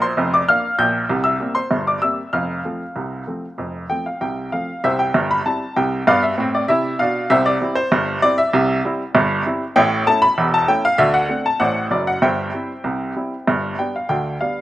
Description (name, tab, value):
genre	ragtime piano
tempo	97 BPM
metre	2/4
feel	straight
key	F major, C major from 4.8 s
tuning	A4 = 440 Hz
part	clear upright piano	solo	0.0-14.6 s	E1 to G6	-16 LUFS	equal	slapback echo
room	little or no reverb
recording	recorded outdoors, with no room sound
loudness	-16 LUFS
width	side -14 dB against mid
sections	0.0-4.8 A section; 4.8-14.6 B section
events	none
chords	0.0 Bb; 1.1 C7; 2.3 F; 4.8 C; 6.1 G; 7.3 C; 9.8 A; 11.0 D7; 12.2 C/G; 13.5 G